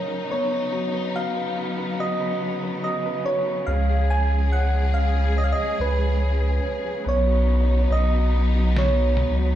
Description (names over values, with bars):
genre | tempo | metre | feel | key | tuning
pop ballad | 71 BPM | 4/4 | straight | unclear | A4 = 440 Hz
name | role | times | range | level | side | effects
warm concert grand piano | accompaniment | 0.0-9.6 s | F#3 to B4 | -31 LUFS | left 1 dB | slapback echo
warm studio string section | sustained chords | 0.0-9.6 s | A#2 to G#4 | -29 LUFS | left 1 dB | none
soft struck synth lead | melody | 0.3-9.6 s | B4 to G#5 | -26 LUFS | right 1 dB | chorus, slapback echo
sub bass with octave | bass | 3.7-9.6 s | B1 to C#2 | -20 LUFS | equal | none
lo-fi sampler-style drum kit | drums | 8.8-9.4 s | snare drum, toms | -30 LUFS | left 2 dB | slapback echo
room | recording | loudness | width
small room ambience | live gig heard through the venue's PA, club reverb | -20 LUFS | side -12 dB against mid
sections
0.0-9.6 A section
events
drum fill 8.8-9.6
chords
0.3 Badd9; 3.7 C#; 7.1 Badd9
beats
| 0.30 1.14 1.99 2.83 | 3.68 4.53 5.37 6.21 | 7.06 7.91 8.75